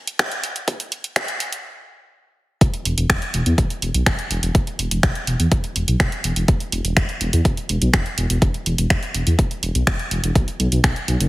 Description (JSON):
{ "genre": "melodic techno", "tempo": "124 BPM", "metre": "4/4", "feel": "straight", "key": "unclear", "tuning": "A4 = 440 Hz", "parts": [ { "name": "house drum kit", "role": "drums", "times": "0.1-11.3 s", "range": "finger snaps, hi-hat", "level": "-22 LUFS", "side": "right 1 dB", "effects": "high-pass filter on hats, high-pass filter on snare, high-pass filter on room" }, { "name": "electronic kick drum", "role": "drums", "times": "0.2-10.9 s", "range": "none", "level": "-19 LUFS", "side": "equal", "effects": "high-pass filter on kick, high-pass filter on room" }, { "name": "dark detuned saw bass", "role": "bass", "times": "2.6-11.3 s", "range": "E1 to E2", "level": "-20 LUFS", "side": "equal", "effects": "tube saturation, sidechain pumping" } ], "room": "light reverb", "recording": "heavily compressed radio sound", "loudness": "-18 LUFS", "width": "side -18 dB against mid", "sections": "0.0-2.6 A section; 2.6-11.3 B section", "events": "build-up 0.0-2.6; stop 1.6-2.6; drop 2.6-11.3", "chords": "none" }